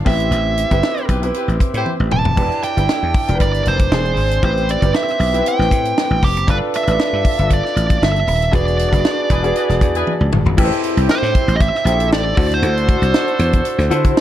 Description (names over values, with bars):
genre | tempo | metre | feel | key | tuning
polished 1980s jazz-funk pop | 117 BPM | 4/4 | swing 54% on 16ths | A minor | A4 = 440 Hz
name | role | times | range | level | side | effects
clear grand piano | accompaniment | 0.0-14.2 s | B3 to C5 | -21 LUFS | left 1 dB | lush chorus
nasal lead guitar with a parked wah | melody | 0.1-14.2 s | G4 to A5 | -20 LUFS | right 3 dB | overdrive
dry thumbed slap bass | bass | 0.1-14.1 s | D#1 to D3 | -18 LUFS | equal | none
tight funk drum kit | drums | 0.1-14.2 s | crash cymbal, hi-hat, kick drum, snare drum, toms | -18 LUFS | equal | none
clear horn section | second line | 1.1-1.9, 9.3-14.2 s | C4 to C5 | -26 LUFS | left 1 dB | none
room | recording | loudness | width
light reverb, small room ambience | dark, warm production | -14 LUFS | side -12 dB against mid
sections
0.0-10.6 A section; 10.6-14.2 B section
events
band accent 0.3-2.4, 8.5-10.6; drum fill 1.9-2.4, 10.1-10.6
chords
0.1 Am9; 2.4 Em7; 3.9 E7b13; 4.4 Am9; 6.5 G9; 8.5 E7; 10.6 Am7; 12.4 D7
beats
| 0.32 0.83 1.35 1.86 | 2.37 2.89 3.40 3.91 | 4.43 4.94 5.45 5.97 | 6.48 6.99 7.50 8.02 | 8.53 9.04 9.56 10.07 | 10.58 11.09 11.61 12.12 | 12.63 13.14 13.65 14.17